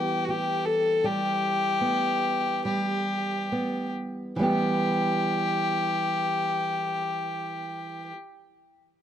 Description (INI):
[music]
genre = celtic folk, Celtic slow air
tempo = 35 BPM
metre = 4/4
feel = rubato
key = E minor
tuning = A4 = 441 Hz
[part]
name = rich fiddle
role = melody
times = 0.0-8.1 s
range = F#4 to A4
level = -26 LUFS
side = left 2 dB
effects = none
[part]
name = nylon-string guitar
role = accompaniment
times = 0.0-8.2 s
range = E3 to G4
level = -29 LUFS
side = right 2 dB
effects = none
[sound]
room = light reverb, small room reverb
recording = dry, close 1970s-style studio recording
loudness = -24 LUFS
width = side -10 dB against mid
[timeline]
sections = 0.0-4.4 A section; 4.4-9.0 B section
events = slowing down 0.0-4.4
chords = 0.0 Em